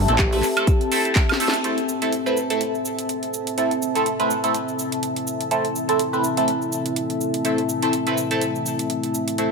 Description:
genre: bass house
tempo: 124 BPM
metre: 4/4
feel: swing 56% on 16ths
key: A minor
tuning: A4 = 440 Hz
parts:
  - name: warbly tape-like pad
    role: texture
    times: 0.0-9.5 s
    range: C4 to A5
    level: -26 LUFS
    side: left 1 dB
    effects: chorus, built-in reverb, sidechain pumping
  - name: band-passed chord stab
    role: stabs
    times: 0.1-9.5 s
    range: A3 to B4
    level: -23 LUFS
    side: right 2 dB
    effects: phaser, wide subtle chorus, sidechain pumping, ping-pong delay
  - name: house drum kit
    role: drums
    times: 0.1-9.5 s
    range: cabasa, handclaps, hi-hat, snare drum, woodblock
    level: -26 LUFS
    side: right 3 dB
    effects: none
  - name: electronic kick drum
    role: drums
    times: 0.2-1.3 s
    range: none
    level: -19 LUFS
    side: equal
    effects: none
  - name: dark analog pad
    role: sustained chords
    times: 1.6-9.5 s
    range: A3 to C5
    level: -28 LUFS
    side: left 2 dB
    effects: lush chorus, sidechain pumping
room: moderate plate reverb, RT60 2.1 s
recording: none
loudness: -20 LUFS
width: side -4 dB against mid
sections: 0.0-1.6 A section; 1.6-9.5 B section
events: drum fill 1.2-1.6; band accent 1.5; filter sweep on analog synth pad 1.6-9.5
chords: 0.0 Am

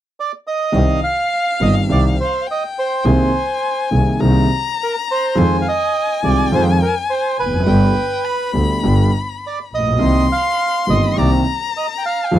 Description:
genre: tango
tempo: 104 BPM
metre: 4/4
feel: rubato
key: C minor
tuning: A4 = 440 Hz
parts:
  - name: bandoneon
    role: melody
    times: 0.2-12.4 s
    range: Bb4 to G5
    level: -19 LUFS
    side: right 3 dB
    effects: none
  - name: warm violin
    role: second line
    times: 0.7-12.4 s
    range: F5 to C6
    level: -23 LUFS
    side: left 6 dB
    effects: none
  - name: warm concert grand piano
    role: accompaniment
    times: 0.7-12.4 s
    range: G1 to Ab4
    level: -17 LUFS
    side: equal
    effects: none
  - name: clear double bass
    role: bass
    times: 0.7-12.4 s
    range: F1 to F2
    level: -17 LUFS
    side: equal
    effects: none
room: little or no reverb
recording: dry, close 1970s-style studio recording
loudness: -14 LUFS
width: side -12 dB against mid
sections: 0.7-12.4 A section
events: none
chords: 0.0 N.C.; 0.7 Cm; 3.1 Abadd9/C; 5.4 Fm7; 7.7 G; 10.0 Cm7

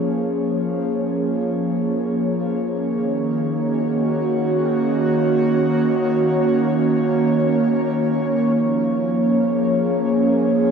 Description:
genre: ambient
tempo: free time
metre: none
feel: none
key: Db major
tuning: A4 = 440 Hz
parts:
  - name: airy breathy pad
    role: solo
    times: 0.0-10.7 s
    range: Eb3 to Db5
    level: -17 LUFS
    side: right 1 dB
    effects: chorus, dub echo
room: wet plate reverb, RT60 3.6 s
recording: echo-heavy mix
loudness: -17 LUFS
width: side -6 dB against mid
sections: 0.0-8.6 A section; 8.6-10.7 B section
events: none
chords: 0.0 Db6; 2.9 Ebm7; 8.6 Db6

